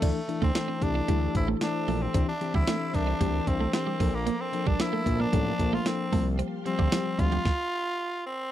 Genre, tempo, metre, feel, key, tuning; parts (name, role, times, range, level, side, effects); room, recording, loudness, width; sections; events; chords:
1980s-style pop; 113 BPM; 4/4; straight; A4 = 443 Hz
raspy tenor saxophone; melody; 0.0-8.5 s; A3 to F4; -31 LUFS; right 1 dB; slapback echo
mellow FM electric piano; accompaniment; 0.0-7.5 s; E3 to C5; -31 LUFS; left 5 dB; chorus
soft string machine; sustained chords; 0.0-7.4 s; Bb3 to D6; -39 LUFS; right 2 dB; phaser, ensemble chorus
twelve-string electric guitar; riff; 0.0-7.4 s; F3 to D4; -33 LUFS; right 6 dB; analog chorus, slapback echo
fat analog bass; bass; 0.0-7.4 s; A1 to D2; -30 LUFS; right 1 dB
clean 12-bit digital drum machine; drums; 0.0-7.6 s; crash cymbal, hi-hat, kick drum, snare drum, tambourine; -28 LUFS; right 1 dB
little or no reverb; dry, close 1970s-style studio recording; -25 LUFS; side -12 dB against mid
0.0-8.5 A section
stop 7.5-8.5
0.0 Dsus2; 2.1 Cadd9; 4.0 Bbmaj7; 6.1 Csus4